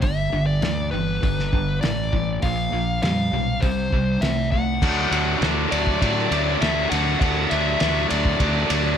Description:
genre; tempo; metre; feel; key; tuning
classic rock; 100 BPM; 4/4; straight; unclear; A4 = 440 Hz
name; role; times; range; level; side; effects
dark smooth lead guitar; melody; 0.0-9.0 s; B4 to F#5; -26 LUFS; left 3 dB; overdrive, digital delay
distorted electric guitar; riff; 0.0-9.0 s; G2 to D4; -23 LUFS; equal; distortion
fuzz fingered electric bass; bass; 0.0-8.9 s; G1 to A2; -26 LUFS; equal; overdrive
cloth-damped thuddy drum kit; drums; 0.0-8.8 s; crash cymbal, hi-hat, kick drum, ride cymbal, snare drum; -24 LUFS; equal; none
room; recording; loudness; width
light reverb; none; -19 LUFS; side -8 dB against mid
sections
0.0-4.8 A section; 4.8-9.0 B section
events
none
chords
0.0 G; 2.4 Bb5; 3.6 C5; 4.8 D

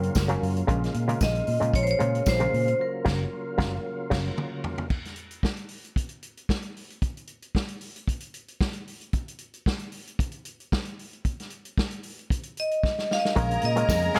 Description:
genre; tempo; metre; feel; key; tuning
disco; 114 BPM; 4/4; straight; Bb minor; A4 = 442 Hz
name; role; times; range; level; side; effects
vibraphone with hard mallets; melody; 0.0-4.3, 12.6-14.2 s; Bb4 to F5; -30 LUFS; equal; none
muted clav; accompaniment; 0.0-4.3, 13.4-14.2 s; Db3 to Bb4; -33 LUFS; equal; auto-wah
percussive tonewheel organ; sustained chords; 0.0-4.9, 13.4-14.2 s; Db3 to Ab4; -37 LUFS; equal; overdrive, chorus vibrato, slow rotary speaker
fingered electric bass; bass; 0.0-4.3, 13.4-14.2 s; Gb1 to Bb2; -30 LUFS; equal; none
vintage drum kit; drums; 0.0-14.2 s; crash cymbal, hi-hat, kick drum, snare drum, toms; -31 LUFS; equal; none
tambourine; percussion; 0.1-2.4, 13.9-14.0 s; none; -42 LUFS; equal; none
clear studio violin section; second line; 13.4-14.2 s; Bb4 to Bb5; -35 LUFS; equal; none
clear horn section; stabs; 14.2 s; F3 to Ab4; -23 LUFS; equal; none
room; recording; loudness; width
light reverb, small room ambience; none; -28 LUFS; mono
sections
0.0-4.9 A section; 4.9-13.4 B section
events
band accent 2.8-4.9; drum fill 3.8-4.9, 12.8-13.4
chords
0.0 Gbmaj7; 0.7 Bbm7; 2.8 Gbmaj7; 4.9 N.C.; 13.4 Bbm7

